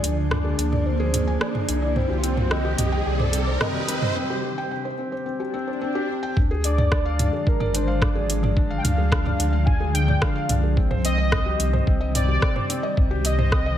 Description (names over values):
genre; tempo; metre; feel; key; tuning
piano and strings electronica; 109 BPM; 4/4; straight; unclear; A4 = 439 Hz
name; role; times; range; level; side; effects
warm velvety synth lead; melody; 0.0-13.8 s; Bb4 to Ab5; -29 LUFS; equal; chorus
granular cloud pad; sustained chords; 0.0-13.8 s; C3 to Bb3; -29 LUFS; right 1 dB; built-in reverb, sidechain pumping
felt-muted upright piano; riff; 0.0-13.8 s; C4 to Ab5; -28 LUFS; left 1 dB; ping-pong delay
warm sub bass; bass; 0.0-13.8 s; Ab1 to D2; -24 LUFS; equal; sidechain pumping
deep house drum kit; drums; 0.0-13.6 s; hi-hat, rim click, toms; -26 LUFS; right 1 dB; none
riser and swell; sound effects; 0.7-6.4 s; none; -32 LUFS; right 1 dB; none
electronic kick drum; drums; 6.4-13.6 s; none; -21 LUFS; equal; none
room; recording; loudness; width
light reverb, digital ambience; none; -20 LUFS; side -11 dB against mid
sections
0.0-6.4 A section; 6.4-13.8 B section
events
build-up 0.0-6.4; filter sweep on soft synth lead 0.0-6.4; riser 0.7-4.2; break 4.2-6.4; swell 5.5-6.4; drop 6.4-13.8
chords
0.0 Ddim; 2.0 Cm; 6.4 Ddim; 10.8 Cm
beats
0.31 0.86 1.41 | 1.96 2.51 3.06 3.62 | 4.17 4.72 5.27 5.82 | 6.37 6.92 7.47 8.02 | 8.57 9.12 9.67 10.22 | 10.77 11.32 11.87 12.42 | 12.97 13.52